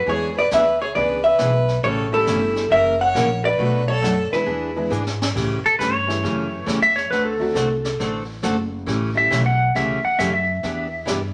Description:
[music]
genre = country, western swing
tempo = 136 BPM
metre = 4/4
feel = swing 66% on 8ths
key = A mixolydian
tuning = A4 = 440 Hz
[part]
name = vintage hollow-body jazz guitar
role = melody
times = 0.0-4.9 s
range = A4 to F#5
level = -22 LUFS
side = equal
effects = none
[part]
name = rich fiddle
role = second line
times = 0.0-4.9 s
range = E4 to C#5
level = -28 LUFS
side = equal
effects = none
[part]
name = upright bass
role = bass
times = 0.0-11.3 s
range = F#1 to A2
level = -28 LUFS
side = equal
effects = none
[part]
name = picked steel-string acoustic guitar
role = accompaniment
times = 0.1-11.2 s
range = B2 to A4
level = -28 LUFS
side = equal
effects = none
[part]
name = tack piano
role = accompaniment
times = 0.1-9.3 s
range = E3 to G#4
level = -31 LUFS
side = equal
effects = none
[part]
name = jazz brush drum kit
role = drums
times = 0.1-11.3 s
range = brushed snare drum, crash cymbal, hi-hat, kick drum, snare drum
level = -32 LUFS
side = equal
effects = none
[part]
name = clean lap steel guitar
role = second line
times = 5.7-11.2 s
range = A4 to F#5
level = -22 LUFS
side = equal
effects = none
[sound]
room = wet studio reverb, RT60 0.8 s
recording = none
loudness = -20 LUFS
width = mono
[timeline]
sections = 0.0-5.4 A section; 5.4-11.3 B section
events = drum fill 4.9-5.4; electric slide guitar solo 5.4-11.3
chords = 0.1 E7; 1.8 A7; 2.7 F#7; 3.6 Bm7; 4.5 E7; 5.4 A7; 7.1 D7; 8.9 A7; 10.6 Em7

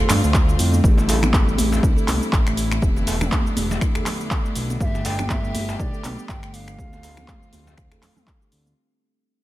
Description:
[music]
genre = afro house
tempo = 121 BPM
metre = 4/4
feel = swing 56% on 16ths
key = unclear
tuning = A4 = 440 Hz
[part]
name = rich chamber string section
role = sustained chords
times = 0.0-8.8 s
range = C3 to G4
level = -32 LUFS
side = left 1 dB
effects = sidechain pumping
[part]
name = buzzing kalimba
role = arpeggios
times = 0.0-8.7 s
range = G3 to A4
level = -27 LUFS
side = right 1 dB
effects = sidechain pumping, ping-pong delay
[part]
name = smooth synth bass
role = bass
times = 0.1-8.7 s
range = E1 to G2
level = -23 LUFS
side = equal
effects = sidechain pumping
[part]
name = deep house drum kit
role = drums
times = 0.1-8.8 s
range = finger snaps, handclaps, hi-hat, shaker, toms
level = -26 LUFS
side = equal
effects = overdrive, studio ambience
[part]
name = congas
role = percussion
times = 0.1-8.7 s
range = none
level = -31 LUFS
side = right 2 dB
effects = none
[part]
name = electronic kick drum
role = drums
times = 0.3-8.4 s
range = none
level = -20 LUFS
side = equal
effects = overdrive, studio ambience
[part]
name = djembe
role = percussion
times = 0.8-8.3 s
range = none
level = -31 LUFS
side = left 2 dB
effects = none
[part]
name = bright reedy bansuri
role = melody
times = 4.8-8.3 s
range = D5 to G5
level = -37 LUFS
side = right 1 dB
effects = ping-pong delay
[sound]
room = small room ambience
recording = none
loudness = -18 LUFS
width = side -16 dB against mid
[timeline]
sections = 0.0-8.8 A section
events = drop 0.0-8.8; fade-out 0.8-8.8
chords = 0.0 Dm7; 0.8 Am7; 2.8 Em7; 4.8 G; 6.8 Dm7

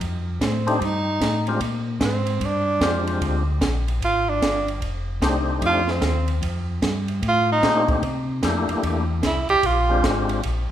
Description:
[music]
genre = soul jazz organ trio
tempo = 150 BPM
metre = 4/4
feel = swing 64% on 8ths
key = F mixolydian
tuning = A4 = 440 Hz
[part]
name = mellow tonewheel organ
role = bass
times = 0.0-10.7 s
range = F1 to C3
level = -24 LUFS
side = left 1 dB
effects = slow rotary speaker
[part]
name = compact cocktail drum kit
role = drums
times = 0.0-10.6 s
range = hi-hat, kick drum, ride cymbal, snare drum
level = -27 LUFS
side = right 1 dB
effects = none
[part]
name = warm tenor saxophone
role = melody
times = 0.5-10.1 s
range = C4 to G4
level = -22 LUFS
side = right 2 dB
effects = none
[part]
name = percussive tonewheel organ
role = melody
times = 0.7-10.4 s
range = Ab3 to G4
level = -25 LUFS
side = left 3 dB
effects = slow rotary speaker, overdrive, chorus vibrato
[sound]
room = moderate recital hall reverb, RT60 1.6 s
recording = recorded in a church or concert hall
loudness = -19 LUFS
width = side -11 dB against mid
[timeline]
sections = 0.0-10.7 A section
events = tenor saxophone solo 0.0-10.7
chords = 0.0 F13; 1.6 Bb13; 4.8 F13; 8.0 C13; 9.6 Bb13

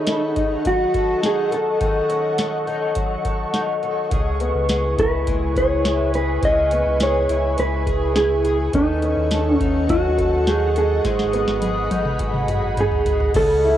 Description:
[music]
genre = dream pop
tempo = 104 BPM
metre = 4/4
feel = straight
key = C# minor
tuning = A4 = 438 Hz
[part]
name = mellow electric guitar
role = melody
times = 0.0-13.8 s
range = D#4 to D#5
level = -20 LUFS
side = right 1 dB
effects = cassette tape, analog delay
[part]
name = ethereal airy pad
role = sustained chords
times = 0.0-13.8 s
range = E3 to C#6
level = -26 LUFS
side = equal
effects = ensemble chorus, built-in reverb
[part]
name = fingerpicked twelve-string acoustic guitar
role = arpeggios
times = 0.0-13.8 s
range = G#2 to A4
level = -25 LUFS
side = left 3 dB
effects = wide subtle chorus, analog delay
[part]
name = booming analog drum machine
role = drums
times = 0.1-13.5 s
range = crash cymbal, hi-hat, kick drum, ride cymbal, snare drum, toms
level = -24 LUFS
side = equal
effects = cassette tape
[part]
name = sub bass with octave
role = bass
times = 4.1-13.8 s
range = G#1 to D#2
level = -24 LUFS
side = equal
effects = none
[sound]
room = light reverb, digital ambience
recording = home recording on cassette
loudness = -17 LUFS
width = side -11 dB against mid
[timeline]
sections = 0.0-13.3 A section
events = drum fill 11.0-13.3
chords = 0.0 D#m7b5; 4.1 C#m7; 8.7 D#m7b5; 11.0 G#m7

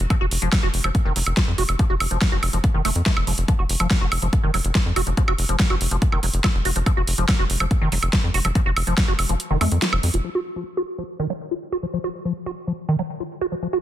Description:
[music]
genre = psychedelic trance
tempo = 142 BPM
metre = 4/4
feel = straight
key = unclear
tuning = A4 = 440 Hz
[part]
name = tight sequencer bass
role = bass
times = 0.0-10.2 s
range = F1 to F2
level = -22 LUFS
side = equal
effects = none
[part]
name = big-room dance drum kit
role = drums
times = 0.0-10.2 s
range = hi-hat, snare drum, woodblock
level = -24 LUFS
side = right 1 dB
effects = overdrive, low-pass filter on hats, small room ambience, low-pass filter on perc, low-pass filter on snare
[part]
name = liquid acid bass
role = riff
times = 0.1-13.8 s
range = Eb3 to Gb4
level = -26 LUFS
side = right 1 dB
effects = phaser, auto-pan, sidechain pumping, ping-pong delay
[part]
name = electronic kick drum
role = drums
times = 0.1-9.1 s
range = none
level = -20 LUFS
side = equal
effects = small room ambience
[sound]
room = digital ambience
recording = dense, heavily limited modern master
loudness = -19 LUFS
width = side -12 dB against mid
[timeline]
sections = 0.0-10.2 A section; 10.2-13.8 B section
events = kick drops out 9.4-10.2; filter sweep on acid bass 10.2-13.8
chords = 0.0 N.C.; 10.2 Ebmadd9

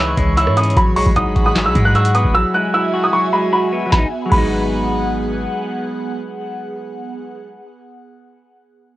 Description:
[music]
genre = hip hop, trap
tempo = 152 BPM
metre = 4/4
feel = half-time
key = G# minor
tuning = A4 = 439 Hz
[part]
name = dark baby grand piano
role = melody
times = 0.0-5.1 s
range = B5 to F#6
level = -18 LUFS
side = right 1 dB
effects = cassette tape
[part]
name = semi-hollow electric guitar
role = accompaniment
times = 0.0-7.7 s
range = E3 to F#4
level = -21 LUFS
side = left 2 dB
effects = cassette tape
[part]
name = airy breathy pad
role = sustained chords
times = 0.0-7.2 s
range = E3 to C#6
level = -23 LUFS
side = right 2 dB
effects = chorus, phaser, cassette tape
[part]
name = clean 808-style bass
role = bass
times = 0.0-5.5 s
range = E1 to G#2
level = -19 LUFS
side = equal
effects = transformer saturation
[part]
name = booming analog drum machine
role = drums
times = 0.2-4.4 s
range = crash cymbal, handclaps, hi-hat, kick drum, rim click, snare drum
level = -18 LUFS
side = equal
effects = cassette tape
[sound]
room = little or no reverb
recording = home recording on cassette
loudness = -14 LUFS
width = side -16 dB against mid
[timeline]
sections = 0.0-3.9 A section; 3.9-7.1 B section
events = break 2.3-3.9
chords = 0.0 C#madd9; 0.8 G#m7; 2.3 Eadd9; 3.9 G#m7

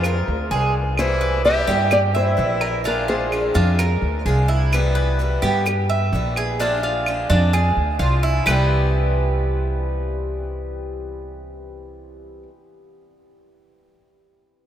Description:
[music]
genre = latin, Cuban son and guajira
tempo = 128 BPM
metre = 4/4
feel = straight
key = C major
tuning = A4 = 441 Hz
[part]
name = nylon-string guitar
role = melody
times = 0.0-3.5 s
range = Bb4 to E5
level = -23 LUFS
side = left 1 dB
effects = none
[part]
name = bright trumpet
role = second line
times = 0.0-3.5 s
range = D4 to G4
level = -30 LUFS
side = left 4 dB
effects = none
[part]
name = picked swing-style acoustic guitar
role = accompaniment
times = 0.0-12.5 s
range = C3 to F4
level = -28 LUFS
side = left 2 dB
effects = none
[part]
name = Cuban tres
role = arpeggios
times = 0.0-12.4 s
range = D4 to E5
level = -24 LUFS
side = right 2 dB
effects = none
[part]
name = upright bass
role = bass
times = 0.0-12.4 s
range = Bb1 to G2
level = -21 LUFS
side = equal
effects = none
[part]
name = claves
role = percussion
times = 0.0-8.6 s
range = none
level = -28 LUFS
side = right 2 dB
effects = none
[sound]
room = wet cathedral reverb, RT60 6.5 s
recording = in a vast, echoing space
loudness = -17 LUFS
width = side -10 dB against mid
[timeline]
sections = 0.0-4.7 A section; 4.7-8.5 B section; 8.5-12.2 C section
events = none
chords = 0.0 Bb9; 1.0 Cmaj7; 2.9 Bb9; 4.7 Cmaj7; 6.6 Bb9; 8.5 Cmaj7

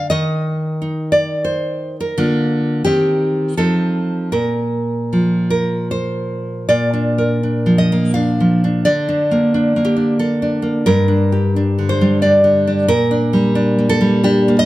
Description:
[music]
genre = romantic piece for solo classical guitar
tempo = 74-92 BPM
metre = 3/4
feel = rubato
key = Bb major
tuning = A4 = 442 Hz
[part]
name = nylon-string guitar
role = solo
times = 0.0-14.7 s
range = G2 to F5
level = -14 LUFS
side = equal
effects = none
[sound]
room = moderate recital hall reverb, RT60 1.8 s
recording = close, detailed microphones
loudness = -14 LUFS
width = side -16 dB against mid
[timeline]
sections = 0.0-6.7 A section; 6.7-14.7 B section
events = none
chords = 0.0 N.C.; 2.2 Bb/D; 2.9 Cm/Eb; 3.6 F7; 4.3 Bb5; 6.7 Bb; 8.9 Bb/D; 10.9 Gm; 12.9 Gm/Bb

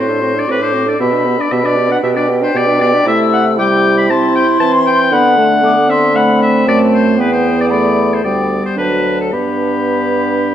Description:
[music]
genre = quick classical-period movement for wind quintet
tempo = 116 BPM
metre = 4/4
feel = rubato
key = G major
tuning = A4 = 441 Hz
[part]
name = silver concert flute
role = melody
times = 0.0-10.5 s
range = G5 to E6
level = -19 LUFS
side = left 5 dB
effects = none
[part]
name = clear oboe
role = second line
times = 0.0-10.5 s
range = G4 to B5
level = -16 LUFS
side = left 2 dB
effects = none
[part]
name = warm French horn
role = accompaniment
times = 0.0-10.5 s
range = F#3 to D4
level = -17 LUFS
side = left 1 dB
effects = none
[part]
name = warm clarinet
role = accompaniment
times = 0.0-10.5 s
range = A3 to B4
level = -19 LUFS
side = right 5 dB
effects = none
[part]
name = mellow bassoon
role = bass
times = 0.0-10.5 s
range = D2 to E3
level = -17 LUFS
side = right 2 dB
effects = none
[sound]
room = moderate recital hall reverb, RT60 1.7 s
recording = dark, warm production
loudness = -10 LUFS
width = side -10 dB against mid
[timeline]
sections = 0.0-10.5 A section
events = none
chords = 0.0 D7/A; 1.0 G/B; 3.1 C; 5.1 D; 7.2 Em; 8.2 G/D; 8.8 D; 9.3 G

